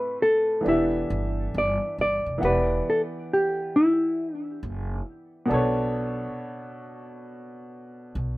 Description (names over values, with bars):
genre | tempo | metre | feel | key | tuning
lo-fi hip hop | 68 BPM | 4/4 | swing 62% on 16ths | E dorian | A4 = 441 Hz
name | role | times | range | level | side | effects
hollow-body jazz guitar | melody | 0.0-4.6 s | E4 to D5 | -22 LUFS | equal | low-pass filter
clear upright piano | accompaniment | 0.0-8.4 s | A2 to F#5 | -29 LUFS | equal | low-pass filter
upright bass | bass | 0.7-8.4 s | E1 to B1 | -29 LUFS | equal | none
room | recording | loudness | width
moderate small room reverb, RT60 0.5 s | rough home demo mix | -22 LUFS | side -19 dB against mid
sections
0.0-2.4 A section; 2.4-8.4 B section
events
none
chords
0.0 Am7; 0.6 Em7; 2.4 Em9; 5.5 Bm9